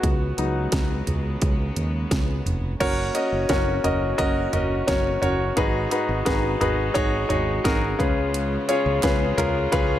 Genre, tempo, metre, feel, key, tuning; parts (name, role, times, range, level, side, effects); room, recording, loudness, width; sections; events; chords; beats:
piano-driven pop; 87 BPM; 4/4; straight; A4 = 440 Hz
clear concert grand piano; accompaniment; 0.0-10.0 s; Ab2 to Eb5; -23 LUFS; left 1 dB
rich chamber string section; sustained chords; 0.0-10.0 s; Db3 to Gb4; -33 LUFS; right 2 dB
fingered electric bass; bass; 0.0-10.0 s; F1 to Eb2; -27 LUFS; equal
house drum kit; drums; 0.0-9.9 s; crash cymbal, hi-hat, kick drum, snare drum, toms; -26 LUFS; right 1 dB; overdrive
group handclap; percussion; 9.0-9.5 s; -37 LUFS; right 9 dB
light reverb, digital ambience; -20 LUFS; side -12 dB against mid
0.0-2.8 A section; 2.8-10.0 B section
grand piano solo 0.0-2.8
0.0 Db7sus4; 2.8 Gb; 5.6 Abm7; 8.0 Db7
| 0.03 0.73 1.42 2.11 | 2.80 3.50 4.19 4.88 | 5.58 6.27 6.96 7.65 | 8.34 9.04 9.73